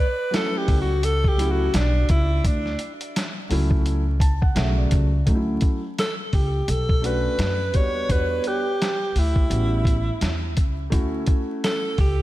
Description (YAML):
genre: hip hop, jazz-hop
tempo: 85 BPM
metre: 4/4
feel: swing 58% on 16ths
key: D major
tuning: A4 = 442 Hz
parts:
  - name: breathy alto saxophone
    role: melody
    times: 0.0-12.2 s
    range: D4 to C#5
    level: -25 LUFS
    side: right 1 dB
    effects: analog delay
  - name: dark grand piano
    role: accompaniment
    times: 0.3-11.9 s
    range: C#3 to A5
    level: -28 LUFS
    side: equal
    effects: none
  - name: lo-fi sampler-style drum kit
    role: drums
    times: 0.3-12.2 s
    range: hi-hat, kick drum, snare drum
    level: -22 LUFS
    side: equal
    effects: none
  - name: upright bass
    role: bass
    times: 0.7-12.2 s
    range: A1 to F#2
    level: -23 LUFS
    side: equal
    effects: none
room: light reverb, small room ambience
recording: vinyl crackle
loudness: -19 LUFS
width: side -16 dB against mid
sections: 0.0-5.3 A section; 5.3-12.2 B section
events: alto saxophone solo 0.0-5.3; grand piano fill 3.9-5.3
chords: 0.0 Dmaj9; 6.7 Bm9; 8.1 Em9; 9.5 A13; 10.9 Dmaj9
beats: 0.33 1.04 1.74 | 2.45 3.15 3.86 4.57 | 5.27 5.98 6.68 7.39 | 8.10 8.80 9.51 10.21 | 10.92 11.62